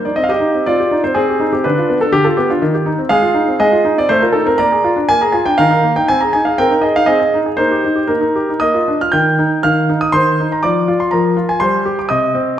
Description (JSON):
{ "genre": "classical-period piano sonatina", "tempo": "121 BPM", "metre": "3/4", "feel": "straight", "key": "Eb major", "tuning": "A4 = 442 Hz", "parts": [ { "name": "warm concert grand piano", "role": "solo", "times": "0.0-12.6 s", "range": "C3 to G6", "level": "-12 LUFS", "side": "equal", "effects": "none" } ], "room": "wet recital hall reverb, RT60 1.4 s", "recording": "none", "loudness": "-12 LUFS", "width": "side -10 dB against mid", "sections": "0.0-9.1 A section; 9.1-12.6 B section", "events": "none", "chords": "0.2 Cm; 1.6 Bdim/D; 2.6 Cm/Eb; 3.1 Fm7/Ab; 4.1 F7/A; 4.6 Bb7; 5.6 Eb5; 6.1 Ab/C; 7.6 Eb/Bb; 8.6 Bb; 9.1 Eb; 10.6 Bb9/F; 11.6 Gsus4" }